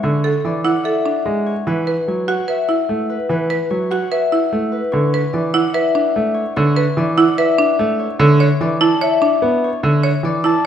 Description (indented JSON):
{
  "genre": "classical, minimalist pattern music",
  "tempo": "147 BPM",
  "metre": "4/4",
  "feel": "straight",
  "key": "unclear",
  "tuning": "A4 = 439 Hz",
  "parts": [
    { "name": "concert harp", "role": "melody", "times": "0.0-10.7 s", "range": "B4 to A5", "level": "-20 LUFS", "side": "left 7 dB", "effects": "none" },
    { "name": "clear grand piano", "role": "accompaniment", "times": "0.0-10.5 s", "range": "D3 to B3", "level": "-18 LUFS", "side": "right 1 dB", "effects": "none" },
    { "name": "buzzing marimba with hard mallets", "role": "arpeggios", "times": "0.2-10.7 s", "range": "D4 to C#5", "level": "-19 LUFS", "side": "right 6 dB", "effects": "none" }
  ],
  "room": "moderate scoring stage reverb, RT60 1.5 s",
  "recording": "none",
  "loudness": "-14 LUFS",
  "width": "side -9 dB against mid",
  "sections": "0.0-10.7 A section",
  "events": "none",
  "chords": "0.0 Dmaj9; 1.7 F#m7; 4.9 Bm9; 8.2 E7sus4",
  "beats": "| 0.03 0.44 0.85 1.26 | 1.67 2.07 2.48 2.89 | 3.30 3.71 4.11 4.52 | 4.93 5.34 5.75 6.16 | 6.56 6.97 7.38 7.79 | 8.20 8.60 9.01 9.42 | 9.83 10.24 10.64"
}